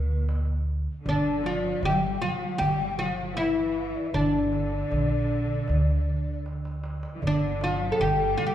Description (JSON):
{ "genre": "Arabic maqam ensemble", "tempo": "78 BPM", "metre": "4/4", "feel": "straight", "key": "G maqam rast", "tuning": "A4 = 438 Hz", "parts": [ { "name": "oud", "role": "melody", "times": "0.0-8.5 s", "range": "Bb3+50c to A4", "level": "-27 LUFS", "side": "left 1 dB", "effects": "none" }, { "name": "breathy mellow low ney", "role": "second line", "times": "0.0-8.5 s", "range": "B4-46c to G5", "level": "-34 LUFS", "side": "left 2 dB", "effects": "none" }, { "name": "clear symphonic cello section", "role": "second line", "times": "0.0-8.5 s", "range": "Bb2+50c to G3", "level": "-34 LUFS", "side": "equal", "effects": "none" }, { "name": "upright bass", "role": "bass", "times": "0.0-8.3 s", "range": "G1 to D2", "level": "-29 LUFS", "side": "equal", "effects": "none" }, { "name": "darbuka", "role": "percussion", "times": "0.3-8.5 s", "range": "none", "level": "-31 LUFS", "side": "right 2 dB", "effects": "none" } ], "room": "wet recital hall reverb, RT60 1.4 s", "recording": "heard from further back in the room", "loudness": "-24 LUFS", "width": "side -11 dB against mid", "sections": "0.0-8.5 A section", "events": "drum fill 6.5-7.2", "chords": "none", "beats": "0.28 | 1.05 1.83 2.60 3.37 | 4.14 4.92 5.69 6.46 | 7.23 8.00" }